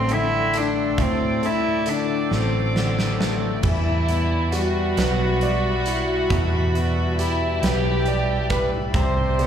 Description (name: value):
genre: six-eight pop ballad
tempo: 45 BPM (dotted quarters)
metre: 6/8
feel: straight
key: unclear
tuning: A4 = 440 Hz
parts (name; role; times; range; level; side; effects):
- warm cello; melody; 0.0-3.3, 9.4-9.5 s; B3 to E4; -23 LUFS; equal; slapback echo, tape echo
- warm concert grand piano; accompaniment; 0.0-9.5 s; A2 to D5; -26 LUFS; left 2 dB; slapback echo
- warm studio string section; sustained chords; 0.0-9.5 s; G3 to D6; -30 LUFS; equal; none
- woody fretless electric bass; bass; 0.0-9.5 s; A1 to E2; -24 LUFS; right 1 dB; none
- huge arena drum kit; drums; 0.1-9.5 s; crash cymbal, hi-hat, kick drum, snare drum; -28 LUFS; right 2 dB; none
- warm studio violin section; second line; 3.6-9.5 s; E4 to C5; -25 LUFS; left 1 dB; slapback echo
room: light reverb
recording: live gig heard through the venue's PA, club reverb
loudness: -19 LUFS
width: side -8 dB against mid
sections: 0.0-9.5 A section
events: drum fill 2.3-3.6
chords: 0.0 D7sus4; 3.6 Em7; 8.9 Cadd9